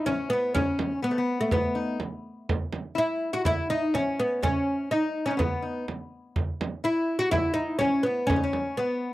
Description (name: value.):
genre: Arabic maqam ensemble.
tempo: 124 BPM.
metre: 4/4.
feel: straight.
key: unclear.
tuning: A4 = 440 Hz.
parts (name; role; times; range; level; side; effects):
oud; melody; 0.0-9.1 s; A3 to F#4; -26 LUFS; equal; none.
lap resonator guitar; second line; 0.0-9.1 s; A3 to F#4; -32 LUFS; left 5 dB; none.
frame drum; percussion; 0.1-8.6 s; none; -29 LUFS; right 2 dB; none.
room: light reverb.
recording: dry, close 1970s-style studio recording.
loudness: -24 LUFS.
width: side -17 dB against mid.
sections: 0.0-9.1 A section.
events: none.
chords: none.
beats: 0.06 | 0.55 1.03 1.51 2.00 | 2.48 2.97 3.45 3.94 | 4.42 4.90 5.39 5.87 | 6.35 6.84 7.32 7.80 | 8.29 8.77.